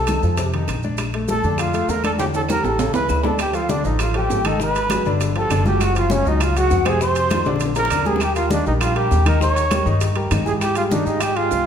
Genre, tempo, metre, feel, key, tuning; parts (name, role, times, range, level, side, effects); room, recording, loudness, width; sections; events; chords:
Afro-Cuban jazz; 200 BPM; 4/4; straight; Bb major; A4 = 438 Hz
breathy trumpet; melody; 0.0-11.7 s; Db4 to Db5; -22 LUFS; right 4 dB
breathy mellow silver concert flute; second line; 0.0-11.7 s; Db5 to Db6; -28 LUFS; left 6 dB
warm grand piano; accompaniment; 0.0-11.6 s; C3 to Eb5; -24 LUFS; left 3 dB
upright bass; bass; 0.0-11.7 s; Gb1 to Ab2; -22 LUFS; equal
bongos; percussion; 0.1-11.7 s; -30 LUFS; left 5 dB
claves; percussion; 0.1-11.4 s; -35 LUFS; right 4 dB
congas; percussion; 0.1-11.7 s; -29 LUFS; right 1 dB
maracas; percussion; 0.1-11.7 s; -36 LUFS; right 7 dB
timbales; percussion; 0.1-11.5 s; -29 LUFS; right 5 dB
wet recital hall reverb, RT60 1.6 s; recorded in a church or concert hall; -17 LUFS; side -8 dB against mid
0.0-3.4 A section; 3.4-11.7 B section
drum fill 2.2-3.4, 7.5-8.2
0.4 F5; 1.0 Bbmaj7; 2.2 Gm69; 2.8 A; 3.4 Dm; 4.6 Abm7; 5.2 Gsus2; 5.8 Gbsus2; 7.0 F5; 7.6 Bb6; 8.2 Eb; 9.4 Eb7b9; 10.6 Abmaj7